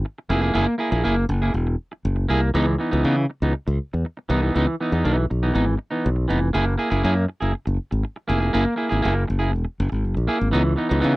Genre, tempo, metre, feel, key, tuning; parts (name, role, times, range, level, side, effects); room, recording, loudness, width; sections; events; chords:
disco; 120 BPM; 4/4; straight; A4 = 440 Hz
modern bright fingered electric bass; bass; 0.0-11.2 s; E1 to C#3; -21 LUFS; equal
clean electric guitar; accompaniment; 0.1-11.2 s; E3 to G#4; -22 LUFS; right 1 dB
little or no reverb; dry, close 1970s-style studio recording; -20 LUFS; side -20 dB against mid
0.0-10.5 A section
0.0 F#9; 2.5 C#m9; 6.5 F#9; 10.5 C#m9